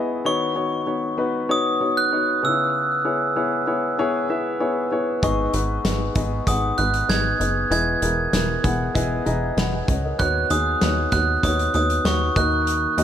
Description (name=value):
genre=piano-driven pop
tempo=97 BPM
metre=4/4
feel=straight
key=unclear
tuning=A4 = 441 Hz
part: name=warm grand piano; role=accompaniment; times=0.0-13.0 s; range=G#2 to B5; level=-24 LUFS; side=left 3 dB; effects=none
part: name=glockenspiel with brass mallets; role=melody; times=0.3-13.0 s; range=C#6 to G#6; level=-23 LUFS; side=right 2 dB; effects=none
part: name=plucky analog bass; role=bass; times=5.2-13.0 s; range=E1 to D#2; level=-24 LUFS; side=right 1 dB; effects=none
part: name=loose indie drum kit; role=drums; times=5.2-13.0 s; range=hi-hat, kick drum, snare drum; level=-25 LUFS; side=equal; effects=none
room=light reverb, small room ambience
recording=none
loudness=-19 LUFS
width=side -9 dB against mid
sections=0.0-13.0 A section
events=grand piano fill 9.0-10.2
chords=0.3 Badd9/D#; 2.4 C#m7; 5.2 G#m; 7.7 Emaj7; 10.2 Badd9/D#; 12.4 D#m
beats=| 0.26 0.88 1.50 2.12 | 2.74 3.36 3.98 4.61 | 5.23 5.85 6.47 7.09 | 7.71 8.33 8.95 9.57 | 10.19 10.81 11.43 12.05 | 12.67